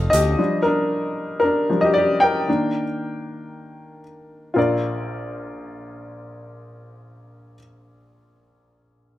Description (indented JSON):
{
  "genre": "pop",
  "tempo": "free time",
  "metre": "none",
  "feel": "none",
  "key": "Bb major",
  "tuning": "A4 = 440 Hz",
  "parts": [
    { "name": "warm upright piano", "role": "accompaniment", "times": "0.0-9.2 s", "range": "Bb1 to G5", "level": "-20 LUFS", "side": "left 1 dB", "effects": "none" }
  ],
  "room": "moderate large studio reverb, RT60 1.0 s, small room ambience",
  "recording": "none",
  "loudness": "-18 LUFS",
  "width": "side -14 dB against mid",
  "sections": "0.0-4.6 A section; 4.6-8.7 B section",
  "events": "upright piano solo 0.0-4.6",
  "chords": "0.4 F13sus4; 2.5 Ebmaj7; 4.6 Bb"
}